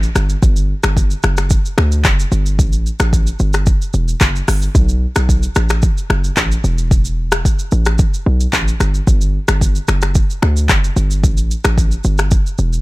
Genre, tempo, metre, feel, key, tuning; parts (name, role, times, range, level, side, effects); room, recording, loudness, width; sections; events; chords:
afrobeats; 111 BPM; 4/4; straight; A4 = 441 Hz
hard-hitting 808-style bass; bass; 0.0-12.8 s; E1 to D2; -15 LUFS; equal
afro-pop drum kit; drums; 0.0-12.8 s; finger snaps, handclaps, hi-hat, kick drum, rim click, shaker; -15 LUFS; equal
little or no reverb; -12 LUFS; side -20 dB against mid
0.0-12.8 A section